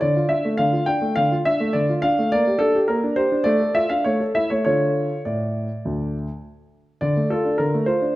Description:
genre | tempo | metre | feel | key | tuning
classical-period piano sonatina | 104 BPM | 4/4 | straight | D minor | A4 = 440 Hz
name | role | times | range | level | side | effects
warm grand piano | solo | 0.0-8.2 s | D2 to G5 | -18 LUFS | equal | none
room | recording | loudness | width
wet recital hall reverb, RT60 1.4 s | none | -18 LUFS | side -17 dB against mid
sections
0.0-7.0 A section; 7.0-8.2 B section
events
none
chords
0.0 Dm; 2.3 Gm/Bb; 3.5 Dm/A; 4.1 A; 4.6 Dm

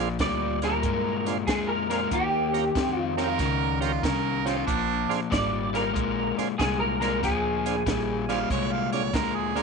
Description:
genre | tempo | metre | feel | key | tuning
electric blues shuffle | 94 BPM | 4/4 | swing 67% on 8ths | Bb mixolydian | A4 = 440 Hz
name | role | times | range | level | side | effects
tonewheel organ | accompaniment | 0.0-9.6 s | Db4 to D5 | -33 LUFS | right 16 dB | slow rotary speaker
overdriven semi-hollow guitar | riff | 0.0-9.6 s | Bb2 to Db4 | -28 LUFS | left 11 dB | none
upright bass | bass | 0.0-9.6 s | Ab1 to G2 | -33 LUFS | right 2 dB | none
compact cocktail drum kit | drums | 0.0-9.6 s | hi-hat, kick drum, snare drum | -32 LUFS | right 2 dB | none
electric guitar through a small old amp | melody | 0.2-8.5 s | G4 to D5 | -28 LUFS | right 2 dB | ensemble chorus
warm harmonica | second line | 3.2-9.6 s | D4 to F5 | -29 LUFS | right 14 dB | overdrive
room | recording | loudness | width
light reverb, small room ambience | 1960s-style stereo with parts hard left and right, nothing above 10.3 kHz | -23 LUFS | side -4 dB against mid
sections
0.0-9.6 A section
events
none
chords
0.0 Bb9; 2.1 Eb9; 4.7 Bb9

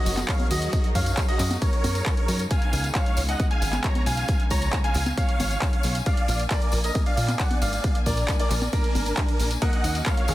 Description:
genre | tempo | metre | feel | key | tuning
uplifting trance | 135 BPM | 4/4 | straight | unclear | A4 = 441 Hz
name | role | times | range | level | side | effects
dense compressed supersaw | melody | 0.0-10.3 s | D4 to Bb5 | -30 LUFS | right 1 dB | sidechain pumping, digital delay
bright baby grand piano | second line | 0.0-10.3 s | Bb4 to Bb5 | -35 LUFS | left 1 dB | sidechain pumping, digital delay
rich studio string section | sustained chords | 0.0-10.3 s | Db3 to Ab5 | -36 LUFS | equal | sidechain pumping
plucky analog bass | bass | 0.1-10.3 s | Gb1 to Bb2 | -26 LUFS | equal | sidechain pumping
punchy analog drum machine | drums | 0.1-10.3 s | congas, handclaps, hi-hat, ride cymbal | -31 LUFS | equal | sidechain pumping on hats, sidechain pumping on cymbals, sidechain pumping on perc
tambourine | percussion | 0.1-10.3 s | none | -37 LUFS | left 4 dB | none
electronic kick drum | drums | 0.3-10.2 s | none | -24 LUFS | equal | none
bright grand piano | second line | 9.6-10.3 s | Ab3 to Bb4 | -32 LUFS | equal | digital delay
room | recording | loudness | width
small room ambience | dense, heavily limited modern master | -21 LUFS | side -15 dB against mid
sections
0.0-10.3 A section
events
none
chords
0.0 Gb6; 2.5 Db7; 6.1 Bb; 9.6 Ebm7

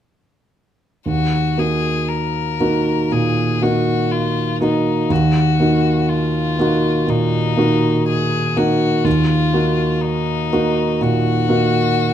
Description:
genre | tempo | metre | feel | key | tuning
classical, slow romantic movement for piano trio | 61 BPM | 4/4 | rubato | Eb minor | A4 = 439 Hz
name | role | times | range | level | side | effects
clear violin | melody | 1.1-12.1 s | Eb4 to Bb4 | -23 LUFS | left 8 dB | none
warm concert grand piano | accompaniment | 1.1-12.1 s | Eb2 to Gb4 | -16 LUFS | right 1 dB | none
room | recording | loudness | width
moderate recital hall reverb, RT60 1.5 s | close, detailed microphones | -15 LUFS | side -10 dB against mid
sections
1.0-12.1 A section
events
none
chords
1.0 Ebm

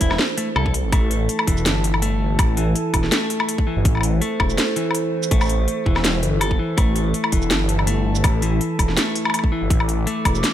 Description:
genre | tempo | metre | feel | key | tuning
half-time drum and bass | 164 BPM | 4/4 | swing 54% on 16ths, half-time | A minor | A4 = 440 Hz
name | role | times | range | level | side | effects
dark analog pad | sustained chords | 0.0-10.5 s | E3 to D6 | -27 LUFS | right 3 dB | lush chorus, sidechain pumping
clean electric guitar | arpeggios | 0.0-10.5 s | E3 to A4 | -25 LUFS | left 3 dB | dub echo
phased detuned saw bass | bass | 0.0-10.4 s | E1 to C2 | -21 LUFS | equal | phaser, tube saturation
drum and bass drum kit | drums | 0.0-10.5 s | hi-hat, shaker, snare drum, woodblock | -23 LUFS | left 1 dB | studio ambience
electronic kick drum | drums | 0.0-10.3 s | none | -19 LUFS | equal | studio ambience
pulsing gated texture | texture | 0.0-0.9 s | A3 to D4 | -38 LUFS | right 4 dB | none
room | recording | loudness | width
digital ambience | none | -17 LUFS | side -11 dB against mid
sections
0.9-10.5 A section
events
drop 0.9-10.5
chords
0.0 A5

